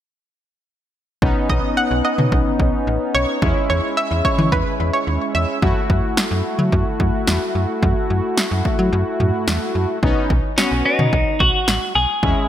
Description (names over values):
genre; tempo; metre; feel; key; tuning
synth-pop; 109 BPM; 4/4; straight; unclear; A4 = 440 Hz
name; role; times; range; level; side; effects
analog synth brass; accompaniment; 1.2-12.5 s; G#3 to F#4; -22 LUFS; left 1 dB; chorus
slap-like FM bass; bass; 1.2-12.3 s; A1 to F#3; -20 LUFS; equal; none
house drum kit; drums; 1.2-12.4 s; kick drum, snare drum, toms; -20 LUFS; equal; overdrive
analog pluck; second line; 1.5-5.4 s; B4 to F#5; -22 LUFS; right 1 dB; chorus, ping-pong delay
twelve-string electric guitar; melody; 10.6-12.5 s; C#4 to G#4; -18 LUFS; equal; ping-pong delay
room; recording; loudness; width
moderate lush hall reverb, RT60 2.3 s; bright 1980s-style digital production; -16 LUFS; side -11 dB against mid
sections
1.2-10.0 A section; 10.0-12.5 B section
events
none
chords
1.2 Badd9; 3.4 E6; 5.6 F#m7; 10.0 Badd9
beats
| 1.22 1.77 2.32 2.87 | 3.42 3.97 4.52 5.07 | 5.62 6.17 6.72 7.28 | 7.83 8.38 8.93 9.48 | 10.03 10.58 11.13 11.68 | 12.23